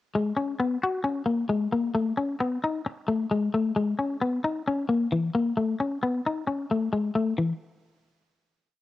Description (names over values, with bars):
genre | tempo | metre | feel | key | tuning
highlife | 132 BPM | 4/4 | straight | unclear | A4 = 441 Hz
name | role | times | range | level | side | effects
clean electric guitar | solo | 0.1-7.5 s | E3 to F#4 | -24 LUFS | left 3 dB | cassette tape
room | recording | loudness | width
light reverb | home recording on cassette | -24 LUFS | side -14 dB against mid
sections
0.1-7.4 A section; 7.4-8.8 final note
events
none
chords
none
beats
| 0.14 0.59 1.04 1.50 | 1.95 2.40 2.85 3.31 | 3.76 4.21 4.66 5.12 | 5.57 6.02 6.47 6.93 | 7.38